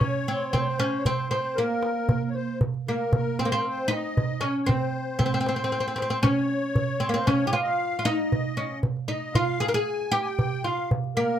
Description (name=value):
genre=Arabic maqam ensemble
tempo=116 BPM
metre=4/4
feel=straight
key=C maqam kurd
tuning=A4 = 440 Hz
part: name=oud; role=melody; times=0.0-11.4 s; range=Bb3 to Bb4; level=-26 LUFS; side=equal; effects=none
part: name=musette accordion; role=second line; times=0.0-11.4 s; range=Bb4 to Ab5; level=-31 LUFS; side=left 3 dB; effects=none
part: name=darbuka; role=percussion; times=0.0-11.1 s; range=none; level=-27 LUFS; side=right 2 dB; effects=none
room=light reverb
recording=close, detailed microphones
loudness=-23 LUFS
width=side -10 dB against mid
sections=0.0-11.4 A section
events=none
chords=none